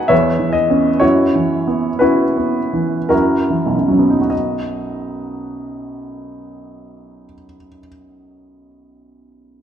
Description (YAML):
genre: classical, romantic character piece for solo piano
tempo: 48-69 BPM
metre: 3/4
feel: rubato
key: B major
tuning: A4 = 441 Hz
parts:
  - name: warm upright piano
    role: solo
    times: 0.0-9.6 s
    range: G#1 to G#5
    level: -14 LUFS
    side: equal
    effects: none
room: wet recital hall reverb, RT60 1.6 s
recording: dark, warm production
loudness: -13 LUFS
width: side -9 dB against mid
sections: 0.0-4.3 A section; 4.3-7.7 B section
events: slowing down 0.0-4.3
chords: 0.1 C#m7/E; 1.0 F#7sus4; 3.1 F#7; 4.3 B